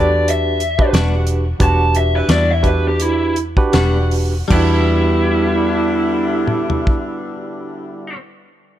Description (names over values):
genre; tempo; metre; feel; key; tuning
straight-eighth soul blues; 76-94 BPM; 4/4; swing 56% on 16ths; E minor; A4 = 440 Hz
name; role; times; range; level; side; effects
raw garage guitar; melody; 0.0-8.2 s; E4 to A5; -19 LUFS; right 1 dB; overdrive
barky tine electric piano; accompaniment; 0.0-8.2 s; D4 to B4; -22 LUFS; right 3 dB; medium tremolo
clear horn section; sustained chords; 0.0-8.2 s; D3 to F#5; -28 LUFS; left 2 dB; none
vintage muted fingered electric bass; bass; 0.0-8.1 s; E1 to E2; -18 LUFS; equal; none
damped 70s drum kit; drums; 0.3-7.1 s; crash cymbal, hi-hat, kick drum, snare drum, toms; -19 LUFS; equal; none
direct-recorded clean electric guitar; stabs; 0.9-8.2 s; G3 to F#4; -24 LUFS; left 4 dB; phaser, tape echo
room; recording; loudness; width
light reverb, studio reverb; none; -13 LUFS; side -12 dB against mid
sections
0.0-4.5 A section; 4.5-7.7 B section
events
slowing down 0.0-4.5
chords
0.0 Em9